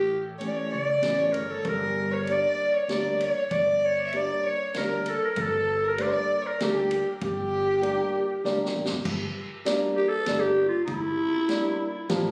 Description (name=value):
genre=klezmer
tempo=97 BPM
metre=3/4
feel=straight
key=G dorian sharp4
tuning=A4 = 440 Hz
part: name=growling clarinet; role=melody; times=0.0-12.3 s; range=E4 to D5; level=-28 LUFS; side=equal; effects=plate reverb, tape echo
part: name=dark violin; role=second line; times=0.0-8.7 s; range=G4 to E5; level=-35 LUFS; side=equal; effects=none
part: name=upright bass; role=bass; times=0.0-12.3 s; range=G1 to D2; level=-37 LUFS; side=equal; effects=none
part: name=warm upright piano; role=accompaniment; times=0.4-12.3 s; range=C#3 to D4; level=-32 LUFS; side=equal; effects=none
part: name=street-band drum kit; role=drums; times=0.4-12.2 s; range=crash cymbal, kick drum, ride cymbal, snare drum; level=-39 LUFS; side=equal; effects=none
room=moderate small room reverb, RT60 0.5 s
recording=recorded on a phone in the room, studio reverb, compression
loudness=-26 LUFS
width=mono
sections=0.0-9.1 A section; 9.1-12.3 B section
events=speeding up 0.0-12.3; drum fill 8.5-9.1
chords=0.0 A; 1.7 Gm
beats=0.42 1.04 | 1.66 2.28 2.90 | 3.52 4.14 4.76 | 5.38 5.99 6.61 | 7.22 7.84 8.45 | 9.06 9.67 10.28 | 10.89 11.49 12.10